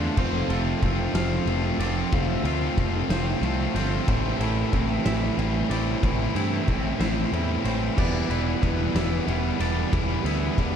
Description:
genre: post-rock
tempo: 62 BPM (dotted quarters)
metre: 6/8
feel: straight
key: A minor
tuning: A4 = 440 Hz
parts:
  - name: twangy electric guitar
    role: arpeggios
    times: 0.0-10.8 s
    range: E2 to F4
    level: -35 LUFS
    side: left 4 dB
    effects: none
  - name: twangy electric guitar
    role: arpeggios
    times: 0.0-10.8 s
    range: A4 to F5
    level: -40 LUFS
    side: right 5 dB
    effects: slapback echo
  - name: distorted electric guitar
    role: riff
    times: 0.0-10.8 s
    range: A2 to F4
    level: -28 LUFS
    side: right 10 dB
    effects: distortion
  - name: tight distorted guitar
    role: riff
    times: 0.0-10.8 s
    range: A2 to F4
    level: -30 LUFS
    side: left 14 dB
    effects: distortion
  - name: fuzz picked electric bass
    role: bass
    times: 0.0-10.8 s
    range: E1 to G2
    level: -27 LUFS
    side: equal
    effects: overdrive
  - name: pedal steel guitar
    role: sustained chords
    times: 0.2-10.8 s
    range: E4 to C6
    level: -41 LUFS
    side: left 1 dB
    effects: none
  - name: oversized low-tuned drum kit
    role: drums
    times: 0.2-10.7 s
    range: crash cymbal, kick drum, ride cymbal, snare drum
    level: -28 LUFS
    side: equal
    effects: none
room: small room ambience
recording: dark, warm production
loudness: -22 LUFS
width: side -8 dB against mid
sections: 0.0-10.8 A section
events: none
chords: 0.2 F; 4.1 Am7; 8.0 Em7

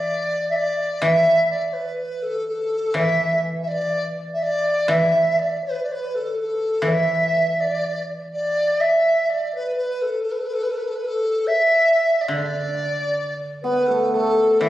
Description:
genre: chinese traditional, Chinese chamber ensemble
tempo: 62 BPM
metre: 2/4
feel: rubato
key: unclear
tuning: A4 = 440 Hz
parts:
  - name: mellow hollow dizi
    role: melody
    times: 0.0-14.7 s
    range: A4 to E5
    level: -20 LUFS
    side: equal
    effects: none
  - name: guzheng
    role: accompaniment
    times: 0.0-14.7 s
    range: D3 to E3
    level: -26 LUFS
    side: right 1 dB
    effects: none
  - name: bright reedy xiao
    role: second line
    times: 13.6-14.7 s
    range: A4 to E5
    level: -19 LUFS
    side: left 2 dB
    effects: none
  - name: hammered dulcimer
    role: second line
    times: 13.6-14.7 s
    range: A3 to E4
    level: -22 LUFS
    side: right 4 dB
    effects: none
room: wet scoring stage reverb, RT60 1.5 s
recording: recorded on a phone in the room, club reverb, compression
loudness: -19 LUFS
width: side -14 dB against mid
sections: 0.0-14.6 A section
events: none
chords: none

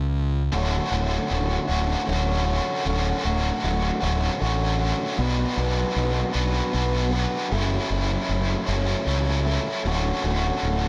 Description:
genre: post-rock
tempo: 52 BPM (dotted quarters)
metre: 6/8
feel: straight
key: D major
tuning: A4 = 440 Hz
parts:
  - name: fuzz fingered electric bass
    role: bass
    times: 0.0-10.9 s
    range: D1 to C#2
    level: -27 LUFS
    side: equal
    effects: overdrive
  - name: biting overdriven guitar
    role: riff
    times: 0.5-10.9 s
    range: D2 to B4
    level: -27 LUFS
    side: equal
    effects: harmonic tremolo
room: digital ambience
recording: none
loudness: -24 LUFS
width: mono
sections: 0.5-10.9 A section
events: none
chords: 0.0 N.C.; 0.5 Dmaj7; 5.2 Bm; 7.5 F#m7; 9.8 Dmaj7

